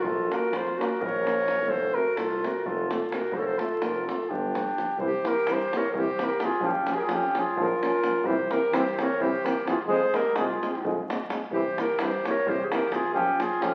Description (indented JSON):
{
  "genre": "balkan folk, Balkan brass band",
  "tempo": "257 BPM (eighths)",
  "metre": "7/8",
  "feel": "straight",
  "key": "C phrygian dominant from 5.0 s",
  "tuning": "A4 = 443 Hz",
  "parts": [
    { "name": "warm flugelhorn", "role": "melody", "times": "0.0-13.7 s", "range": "G4 to Db5", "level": "-30 LUFS", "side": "equal", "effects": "none" },
    { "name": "warm clarinet", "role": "second line", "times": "0.0-13.7 s", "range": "Db4 to Bb4", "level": "-33 LUFS", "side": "equal", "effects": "none" },
    { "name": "warm tuba", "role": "bass", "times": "0.0-13.7 s", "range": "F1 to G2", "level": "-38 LUFS", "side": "equal", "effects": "none" },
    { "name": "davul", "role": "percussion", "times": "0.0-13.7 s", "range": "none", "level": "-36 LUFS", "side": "equal", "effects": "none" },
    { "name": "clear euphonium", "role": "accompaniment", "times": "0.3-13.7 s", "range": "B3 to Db4", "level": "-38 LUFS", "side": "equal", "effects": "none" },
    { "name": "warm trombone", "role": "accompaniment", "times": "0.3-13.7 s", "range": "E3 to Bb3", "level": "-35 LUFS", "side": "equal", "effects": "none" }
  ],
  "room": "wet large studio reverb, RT60 1.3 s",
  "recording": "very old 78 rpm record, vinyl crackle",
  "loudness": "-26 LUFS",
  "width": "mono",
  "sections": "0.0-5.0 A section; 5.0-13.7 B section",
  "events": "none",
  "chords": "0.0 Bbm; 1.7 F; 4.3 G7; 5.0 C; 6.6 Bbm; 8.2 C; 9.9 Fm; 11.5 C; 13.1 Bbm"
}